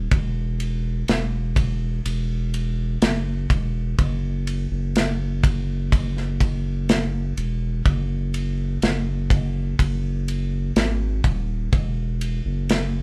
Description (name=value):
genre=pop ballad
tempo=62 BPM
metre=4/4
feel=straight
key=E major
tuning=A4 = 440 Hz
part: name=saturated sub bass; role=bass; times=0.0-13.0 s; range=D#1 to G#1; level=-26 LUFS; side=equal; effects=none
part: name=modern studio drum kit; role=drums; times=0.1-12.9 s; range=kick drum, ride cymbal, snare drum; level=-24 LUFS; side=equal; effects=none
room=moderate studio ambience, RT60 0.5 s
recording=band playing live in one room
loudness=-23 LUFS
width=mono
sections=0.0-13.0 A section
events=none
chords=none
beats=| 0.12 1.08 2.05 3.02 | 3.99 4.95 5.92 6.89 | 7.86 8.82 9.79 10.76 | 11.73 12.70